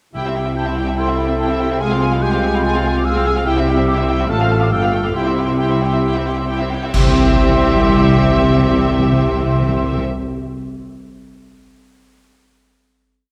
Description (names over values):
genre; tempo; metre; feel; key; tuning
classical, dramatic, fast romantic movement for symphony orchestra; 132-147 BPM; 4/4; straight; C major; A4 = 441 Hz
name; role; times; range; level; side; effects
warm clarinet; second line; 0.1-10.0 s; E4 to A4; -27 LUFS; equal; none
warm oboe; second line; 0.1-10.0 s; E5 to G5; -28 LUFS; equal; none
warm symphonic violin section; second line; 0.1-10.0 s; E4 to C5; -32 LUFS; equal; none
clear symphonic viola section; accompaniment; 0.1-10.0 s; Ab3 to E4; -28 LUFS; equal; none
mellow French horn section; sustained chords; 0.1-10.0 s; G3 to F4; -25 LUFS; equal; none
rich symphonic cello section; bass; 0.1-10.0 s; G2 to C3; -24 LUFS; equal; none
rich symphonic double bass section; bass; 0.1-10.0 s; G1 to C2; -23 LUFS; equal; none
timpani; percussion; 0.1-0.7, 6.9-10.0 s; C3; -23 LUFS; equal; none
dark symphonic violin section; melody; 0.2-10.0 s; E5 to A5; -27 LUFS; equal; none
hollow large flute ensemble; second line; 0.6-10.0 s; G5 to F6; -29 LUFS; equal; none
cymbal swell, clash cymbals and concert bass drum; percussion; 3.5-7.8 s; none; -24 LUFS; equal; none
room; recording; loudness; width
wet concert hall reverb, RT60 2.1 s; none; -16 LUFS; mono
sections
0.2-6.9 A section; 6.9-10.5 final chord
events
slowing down 2.6-6.9; band accent 6.9-7.4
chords
0.2 C; 1.8 Fm/C; 3.5 C; 4.3 F/A; 4.7 G9; 5.1 C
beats
| 0.15 0.57 0.99 1.40 | 1.81 2.23 2.64 3.05 | 3.46 3.87 4.29 4.71 | 5.15 5.59 6.03 6.48 | 6.94 7.38 7.83 8.27 | 8.72 9.17 9.62